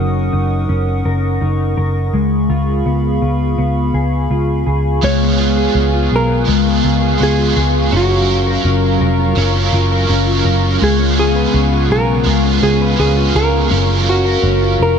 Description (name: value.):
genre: dream pop.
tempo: 83 BPM.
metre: 4/4.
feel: straight.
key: unclear.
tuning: A4 = 439 Hz.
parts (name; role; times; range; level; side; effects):
hollow soft pad; sustained chords; 0.0-15.0 s; B3 to D#6; -23 LUFS; right 1 dB; chorus.
mellow electric guitar; arpeggios; 0.0-15.0 s; F#3 to B4; -18 LUFS; left 5 dB; analog chorus, ping-pong delay.
vintage muted picked electric bass; bass; 0.0-15.0 s; E#1 to C#2; -16 LUFS; right 1 dB; none.
hollow-body jazz guitar; melody; 5.0-15.0 s; F#4 to C#5; -19 LUFS; right 1 dB; ping-pong delay.
crunchy overdriven guitar; accompaniment; 5.0-15.0 s; C#3 to A#4; -19 LUFS; right 6 dB; tremolo, analog chorus.
room: light reverb, digital ambience.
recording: none.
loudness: -12 LUFS.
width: side -7 dB against mid.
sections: 0.0-5.0 A section; 5.0-15.0 B section.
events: none.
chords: 0.0 F#6; 2.1 C#7; 7.9 F#maj7; 10.8 C#7; 13.7 F#maj7.